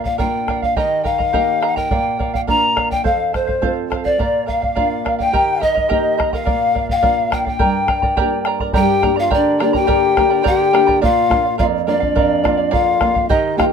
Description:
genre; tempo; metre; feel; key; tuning
andean folk, Andean ensemble; 105 BPM; 2/4; straight; unclear; A4 = 440 Hz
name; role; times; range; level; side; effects
bright polished pan flute; melody; 0.0-13.6 s; C5 to Bb5; -18 LUFS; left 1 dB; none
charango; accompaniment; 0.0-13.7 s; G4 to Bb5; -22 LUFS; right 6 dB; none
nylon-string guitar; accompaniment; 0.0-13.7 s; F2 to G4; -22 LUFS; right 1 dB; none
bombo; percussion; 0.1-13.7 s; none; -23 LUFS; equal; none
mellow hollow large quena; second line; 3.1-13.7 s; D4 to G5; -20 LUFS; left 5 dB; none
room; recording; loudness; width
light reverb; minimal, uncompressed stereo recording; -14 LUFS; side -6 dB against mid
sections
0.0-8.8 A section; 8.8-13.7 B section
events
none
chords
0.0 Bb; 0.8 Eb; 1.9 Bb; 3.0 F; 4.2 Bb; 5.3 Eb; 6.5 Bb; 7.6 Gm; 11.0 Bb

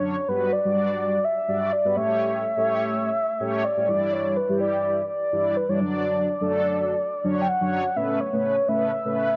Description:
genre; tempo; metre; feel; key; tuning
pop; 125 BPM; 4/4; straight; unclear; A4 = 440 Hz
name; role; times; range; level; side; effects
mellow horn-like synth lead; melody; 0.0-9.4 s; B4 to G5; -26 LUFS; equal; chorus
mellow synth brass; accompaniment; 0.0-9.4 s; F#3 to D5; -29 LUFS; equal; chorus
room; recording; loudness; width
light reverb; nothing above 7.5 kHz; -24 LUFS; mono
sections
0.0-8.0 A section; 8.0-9.4 B section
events
build-up 8.0-9.4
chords
0.3 Gmaj7; 2.0 A7; 3.9 Em7; 5.8 Dmaj7; 8.0 Aadd9

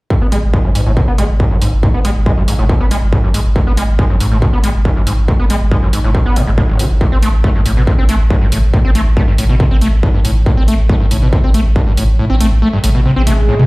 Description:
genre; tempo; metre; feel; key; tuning
driving peak-time techno; 139 BPM; 4/4; straight; G# phrygian; A4 = 440 Hz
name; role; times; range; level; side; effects
screaming distorted acid line; riff; 0.1-13.7 s; G#1 to C4; -17 LUFS; equal; distortion, analog chorus, sidechain pumping, tape echo
electronic kick drum; drums; 0.1-11.8 s; none; -13 LUFS; equal; distortion, overdrive
warm sub bass; bass; 0.2-13.5 s; G#1 to A1; -14 LUFS; equal; overdrive, sidechain pumping, low-pass filter
techno drum kit; drums; 0.3-13.7 s; hi-hat, toms; -20 LUFS; equal; overdrive, sidechain pumping on hats, sidechain pumping on toms
swell; sound effects; 13.1-13.7 s; none; -19 LUFS; right 1 dB; none
room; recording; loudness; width
light reverb, digital ambience; played on a big sound system in a bare room, large studio reverb; -10 LUFS; side -23 dB against mid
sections
0.1-13.7 A section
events
kick drops out 12.2-13.7; swell 13.1-13.7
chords
none

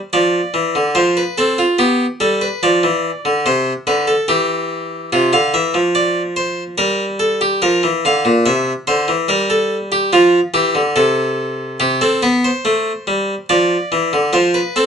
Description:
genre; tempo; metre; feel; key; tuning
classical, baroque-style two-part invention for harpsichord; 72 BPM; 4/4; straight; F major; A4 = 440 Hz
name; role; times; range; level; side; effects
harpsichord; solo; 0.0-14.9 s; Bb2 to F5; -14 LUFS; equal; none
room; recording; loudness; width
moderate studio ambience, RT60 0.5 s; nothing above 10.8 kHz; -13 LUFS; side -7 dB against mid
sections
0.0-14.9 A section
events
none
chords
0.1 Dm7; 1.8 G; 3.5 C; 5.1 F5/C; 6.8 Gm7; 8.5 C; 10.1 F; 11.8 C5; 13.5 Dm7

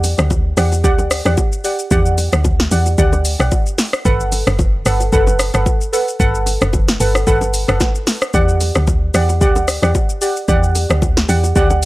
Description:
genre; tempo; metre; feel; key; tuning
amapiano; 112 BPM; 4/4; swing 55% on 16ths; E minor; A4 = 444 Hz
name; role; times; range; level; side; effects
deep mellow chord stab; stabs; 0.0-11.9 s; G4 to F#5; -19 LUFS; right 1 dB; chorus, analog delay
deep log drum bass; bass; 0.0-11.9 s; F#1 to E2; -16 LUFS; equal; none
deep house drum kit; drums; 0.0-11.9 s; hi-hat, kick drum, rim click, shaker, snare drum; -17 LUFS; equal; none
bongos and congas; percussion; 0.0-11.8 s; none; -25 LUFS; left 2 dB; none
room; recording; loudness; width
little or no reverb; dry, gritty hardware recording; -13 LUFS; side -18 dB against mid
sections
0.0-11.9 A section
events
none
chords
0.0 Em9; 3.8 Gmaj9; 8.3 Em9

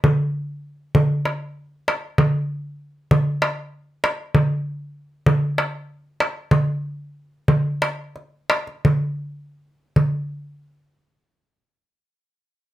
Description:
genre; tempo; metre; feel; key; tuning
turkish; 156-195 BPM (eighths); 7/8; straight; none; none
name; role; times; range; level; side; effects
darbuka; percussion; 0.0-10.3 s; none; -18 LUFS; equal; none
room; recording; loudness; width
wet studio reverb, RT60 0.5 s; none; -20 LUFS; side -14 dB against mid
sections
0.0-10.0 A section; 10.0-12.7 B section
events
slowing down 5.3-10.0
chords
none

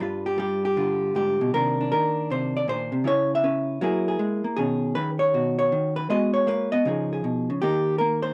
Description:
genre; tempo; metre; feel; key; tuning
solo jazz; 158 BPM; 4/4; swing 66% on 8ths; unclear; A4 = 440 Hz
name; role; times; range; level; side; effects
vintage hollow-body jazz guitar; solo; 0.0-8.3 s; G2 to Fb5; -24 LUFS; equal; none
room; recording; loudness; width
light reverb; dry, close 1970s-style studio recording; -24 LUFS; mono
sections
0.0-8.3 A section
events
none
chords
0.0 G7; 1.5 Cm9; 3.0 Dbm7; 3.8 Gb9; 4.6 B69; 6.1 Abm7; 6.9 Db9; 7.6 Eb6

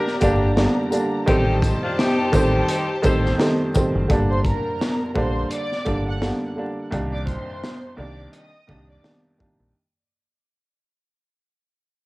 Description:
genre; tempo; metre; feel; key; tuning
hip hop, boom-bap hip-hop; 85 BPM; 4/4; swing 58% on 16ths; G minor; A4 = 440 Hz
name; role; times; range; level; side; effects
warm upright piano; accompaniment; 0.0-9.7 s; C2 to D4; -23 LUFS; right 1 dB; cassette tape, high-pass filter, low-pass filter
warm studio string section; sustained chords; 0.0-4.1 s; G4 to Bb5; -28 LUFS; left 1 dB; high-pass filter, low-pass filter, cassette tape
bright saxophone section; stabs; 0.0-3.3 s; Bb3 to C5; -27 LUFS; left 2 dB; high-pass filter, low-pass filter, cassette tape, tape echo
crunchy breakbeat drum kit; drums; 0.1-9.6 s; hi-hat, kick drum, shaker, snare drum; -24 LUFS; equal; cassette tape
deep dub fingered electric bass; bass; 0.2-9.7 s; F#1 to C2; -23 LUFS; equal; none
tambourine; percussion; 0.2-3.9 s; none; -40 LUFS; left 3 dB; none
dark studio violin section; melody; 4.3-9.0 s; Bb4 to F#6; -30 LUFS; right 1 dB; high-pass filter, low-pass filter, cassette tape, tape echo
room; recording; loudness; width
light reverb; home recording on cassette, vinyl crackle; -18 LUFS; side -22 dB against mid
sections
0.0-4.1 A section; 4.1-9.7 B section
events
fade-out 4.1-9.7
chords
0.0 Gm; 1.3 Am7b5; 4.1 Gm; 6.9 Cm9

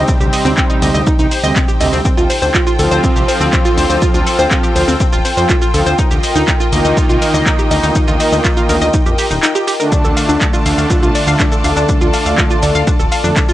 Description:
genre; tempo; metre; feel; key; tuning
melodic techno; 122 BPM; 4/4; straight; D phrygian; A4 = 441 Hz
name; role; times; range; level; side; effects
clear symphonic string section; sustained chords; 0.0-13.5 s; Eb4 to A5; -23 LUFS; left 2 dB; sidechain pumping
analog pluck; arpeggios; 0.0-13.5 s; C4 to F5; -17 LUFS; equal; chorus, sidechain pumping, analog delay
brassy analog pad; stabs; 0.0-13.3 s; C3 to F4; -18 LUFS; right 1 dB; chorus, sidechain pumping, analog delay
plucky analog bass; bass; 0.0-13.3 s; D1 to F2; -18 LUFS; equal; sidechain pumping
warbly tape-like pad; texture; 0.0-13.5 s; Eb4 to A5; -22 LUFS; equal; chorus, built-in reverb, sidechain pumping
electronic kick drum; drums; 0.1-13.5 s; none; -15 LUFS; equal; none
punchy analog drum machine; drums; 0.1-13.5 s; handclaps, hi-hat, shaker; -20 LUFS; equal; none
room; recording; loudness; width
little or no reverb; dry, gritty hardware recording, cassette tape; -11 LUFS; side -14 dB against mid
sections
0.0-13.5 A section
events
none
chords
0.0 Cm; 2.1 Fadd9; 6.0 Ebadd9; 9.9 Dm

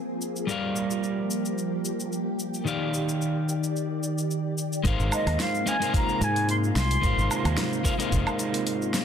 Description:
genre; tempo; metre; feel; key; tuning
sunset chillout; 110 BPM; 4/4; swing 54% on 16ths; Ab lydian; A4 = 440 Hz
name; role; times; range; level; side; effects
electric guitar at the edge of break-up; accompaniment; 0.0-9.0 s; Eb3 to F5; -28 LUFS; moving between left 4 dB and right 4 dB; auto-pan, vintage 12-bit sampler grit, tape echo
soft string machine; sustained chords; 0.0-9.0 s; C3 to D5; -32 LUFS; equal; phaser, ensemble chorus
deep house drum kit; drums; 0.2-9.0 s; hi-hat, shaker, snare drum, woodblock; -32 LUFS; equal; small room ambience
fretless electric bass; bass; 4.8-8.2 s; F1 to Ab2; -25 LUFS; equal; none
electronic kick drum; drums; 4.8-8.2 s; none; -27 LUFS; equal; small room ambience
concert flute; melody; 5.1-7.5 s; Eb5 to C6; -29 LUFS; equal; ping-pong delay
room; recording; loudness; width
light reverb; dense, heavily limited modern master; -24 LUFS; side -8 dB against mid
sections
0.0-4.8 A section; 4.8-9.0 B section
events
none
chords
0.5 Gm7; 2.7 Ebmaj7; 4.8 Ab69

